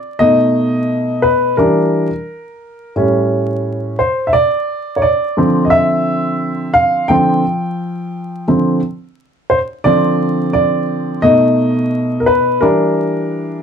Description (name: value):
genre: hip hop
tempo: 87 BPM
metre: 4/4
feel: swing 59% on 16ths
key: D minor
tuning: A4 = 439 Hz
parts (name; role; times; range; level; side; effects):
- warm upright piano; solo; 0.0-13.6 s; A2 to G5; -12 LUFS; equal; none
room: moderate small room reverb, RT60 0.5 s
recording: dark, warm production, vinyl crackle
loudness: -12 LUFS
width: side -7 dB against mid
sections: 0.0-9.9 A section; 9.9-13.6 A section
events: upright piano solo 0.0-9.9, 9.9-13.6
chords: 0.2 B7; 1.6 Em7b5; 3.0 A7#9; 4.3 Dm7; 11.2 B7; 12.6 Em7b5